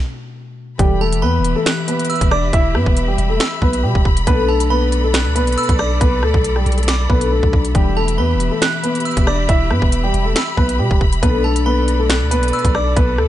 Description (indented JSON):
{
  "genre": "hip hop, drill",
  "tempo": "138 BPM",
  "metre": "4/4",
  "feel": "half-time",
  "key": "E minor",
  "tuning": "A4 = 440 Hz",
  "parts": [
    { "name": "concert harp", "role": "accompaniment", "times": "0.0-13.3 s", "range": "B2 to G4", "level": "-25 LUFS", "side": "left 7 dB", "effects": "none" },
    { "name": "dark baby grand piano", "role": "melody", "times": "0.8-13.3 s", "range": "G3 to E5", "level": "-20 LUFS", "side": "equal", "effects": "none" },
    { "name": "warm symphonic string section", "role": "sustained chords", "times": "0.8-13.3 s", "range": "G4 to B5", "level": "-25 LUFS", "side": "left 1 dB", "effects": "none" },
    { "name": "long sustained 808-style bass", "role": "bass", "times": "0.8-13.3 s", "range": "E1 to B2", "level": "-18 LUFS", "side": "equal", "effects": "none" },
    { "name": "drill drum kit", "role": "drums", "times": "0.8-13.3 s", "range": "finger snaps, hi-hat, kick drum, rim click, snare drum", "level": "-18 LUFS", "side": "equal", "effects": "none" },
    { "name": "delicate synth tine bell", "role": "second line", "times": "1.0-13.0 s", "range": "A5 to F#6", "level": "-26 LUFS", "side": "right 4 dB", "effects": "chorus, phaser, ping-pong delay" }
  ],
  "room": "studio ambience",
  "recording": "nothing above 10.6 kHz",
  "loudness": "-14 LUFS",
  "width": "side -13 dB against mid",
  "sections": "0.8-13.3 A section",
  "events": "break 0.0-0.8; stop 0.0-0.8",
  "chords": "0.0 Bm7; 0.8 Em; 4.3 Bm7; 7.7 Em; 11.2 Bm7"
}